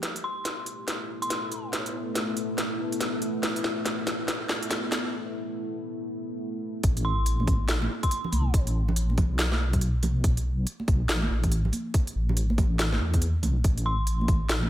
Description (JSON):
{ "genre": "deep dubstep", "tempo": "141 BPM", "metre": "4/4", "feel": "swing 62% on 16ths, half-time", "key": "A minor", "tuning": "A4 = 440 Hz", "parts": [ { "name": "deep dark ambient pad", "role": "sustained chords", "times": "0.0-6.8 s", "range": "A3 to E4", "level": "-33 LUFS", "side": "left 1 dB", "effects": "chorus, built-in reverb" }, { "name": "garage drum kit", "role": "drums", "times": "0.0-14.6 s", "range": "hi-hat, snare drum", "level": "-30 LUFS", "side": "equal", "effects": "none" }, { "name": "dark detuned synth bell", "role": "melody", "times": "0.2-1.6, 7.0-8.5, 13.9-14.2 s", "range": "C6", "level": "-34 LUFS", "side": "equal", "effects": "chorus, dub echo" }, { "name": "deep soft wobble bass", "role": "bass", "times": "6.8-14.7 s", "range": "A1 to E2", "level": "-25 LUFS", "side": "equal", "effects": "chorus, tube saturation" }, { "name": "electronic kick drum", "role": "drums", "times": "6.8-14.4 s", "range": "none", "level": "-24 LUFS", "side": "equal", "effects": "none" }, { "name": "congas", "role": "percussion", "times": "7.4-14.7 s", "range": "none", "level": "-34 LUFS", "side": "right 2 dB", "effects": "none" } ], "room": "light reverb, digital ambience", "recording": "none", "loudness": "-24 LUFS", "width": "side -13 dB against mid", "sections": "0.0-6.8 A section; 6.8-14.7 B section", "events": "build-up 0.0-6.8; drum fill 0.0-5.1; break 5.1-6.8; drop 6.8-14.7", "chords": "0.0 Asus2", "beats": "| 0.03 0.45 0.88 1.30 | 1.73 2.15 2.58 3.01 | 3.43 3.86 4.28 4.71 | 5.13 5.56 5.99 6.41 | 6.84 7.26 7.69 8.11 | 8.54 8.96 9.39 9.81 | 10.24 10.67 11.09 11.52 | 11.94 12.37 12.79 13.22 | 13.64 14.07 14.49" }